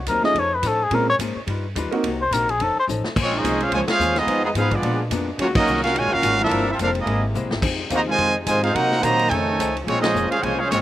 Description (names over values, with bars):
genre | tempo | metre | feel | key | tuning
jazz, big band swing | 214 BPM | 4/4 | swing 59% on 8ths | Bb minor | A4 = 440 Hz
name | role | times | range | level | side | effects
trumpet with cup mute | melody | 0.0-2.9 s | Ab4 to Eb5 | -20 LUFS | left 2 dB | slapback echo
upright bass | bass | 0.0-10.8 s | Eb1 to C3 | -28 LUFS | equal | none
archtop guitar, miked and amplified | accompaniment | 0.1-10.8 s | G2 to C5 | -28 LUFS | left 5 dB | none
swinging big-band drum kit | drums | 0.1-10.8 s | crash cymbal, hi-hat, kick drum, ride cymbal, snare drum | -28 LUFS | equal | none
warm concert grand piano | accompaniment | 0.2-2.0 s | Ab3 to Bb4 | -24 LUFS | right 4 dB | none
bright trumpet section | melody | 3.2-10.8 s | Ab3 to Bb5 | -21 LUFS | right 1 dB | slapback echo
clear trombone section | second line | 3.2-10.8 s | Bb2 to Gb4 | -25 LUFS | right 3 dB | none
clear saxophone section | sustained chords | 3.2-10.8 s | Cb3 to F4 | -33 LUFS | left 1 dB | none
room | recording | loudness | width
little or no reverb | recorded outdoors, with no room sound | -18 LUFS | side -13 dB against mid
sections
0.0-3.2 A section; 3.2-10.8 B section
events
muted trumpet solo 0.0-3.2; drum fill 2.9, 7.3; band accent 3.9, 5.5, 10.0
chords
0.4 Faug7; 0.9 Bbm9; 1.5 G7alt; 2.0 Cm7b5; 2.6 F7b13; 3.2 Bbm9; 4.3 Fm7b5; 4.8 Bb7b9; 5.4 Ebm11; 6.5 Gm11; 7.1 C7alt; 7.6 Fm7; 8.7 Cm7b5; 9.3 F7alt; 9.9 Bbm9